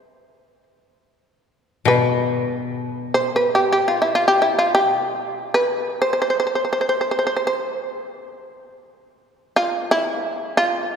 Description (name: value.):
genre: japanese traditional, Japanese chamber music.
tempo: free time.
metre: none.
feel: none.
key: C ryukyu.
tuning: A4 = 438 Hz.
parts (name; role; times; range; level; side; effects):
shamisen; melody; 0.0-11.0 s; E4 to C5; -18 LUFS; equal; none.
koto; accompaniment; 1.9-4.8 s; B2; -22 LUFS; left 4 dB; none.
room: wet church reverb, RT60 3.0 s.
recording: recorded in a church or concert hall.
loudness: -18 LUFS.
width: side -7 dB against mid.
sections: 0.0-11.0 A section.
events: none.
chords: none.